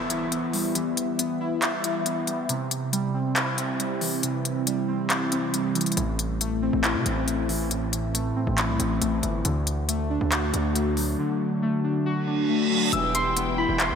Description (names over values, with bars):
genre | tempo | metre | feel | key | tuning
hip hop, trap | 138 BPM | 4/4 | half-time | E minor | A4 = 441 Hz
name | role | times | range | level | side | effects
Celtic harp | melody | 0.0-1.0, 12.9-14.0 s | A4 to E6 | -29 LUFS | equal | analog delay
warbly lo-fi synth keys | accompaniment | 0.0-14.0 s | A2 to E5 | -25 LUFS | equal | chorus, phaser
impact and reverse cymbal | sound effects | 0.0-0.8, 12.3-12.9 s | none | -31 LUFS | right 6 dB | none
trap drum kit | drums | 0.1-13.9 s | handclaps, hi-hat | -28 LUFS | left 1 dB | none
distorted 808-style bass | bass | 6.0-14.0 s | E1 to C3 | -28 LUFS | equal | distortion
dark symphonic string section | sustained chords | 12.9-14.0 s | B3 to G5 | -35 LUFS | equal | none
mellow brass ensemble | stabs | 12.9-13.2 s | B1 to E3 | -34 LUFS | right 4 dB | analog delay
room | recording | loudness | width
wet cathedral reverb, RT60 4.6 s | dreamy mix soaked in reverb | -23 LUFS | side -7 dB against mid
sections
0.0-12.9 A section; 12.9-14.0 B section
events
break 0.0-6.0; impact 0.0-0.8; reverse cymbal 12.3-12.9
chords
0.0 Em; 2.5 C; 6.0 Am; 9.4 D; 12.9 Em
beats
0.32 | 0.75 1.19 1.62 2.06 | 2.49 2.93 3.36 3.80 | 4.23 4.67 5.10 5.54 | 5.97 6.41 6.84 7.28 | 7.71 8.14 8.58 9.02 | 9.45 9.88 10.32 10.75 | 11.19 11.62 12.06 12.49 | 12.93 13.36 13.80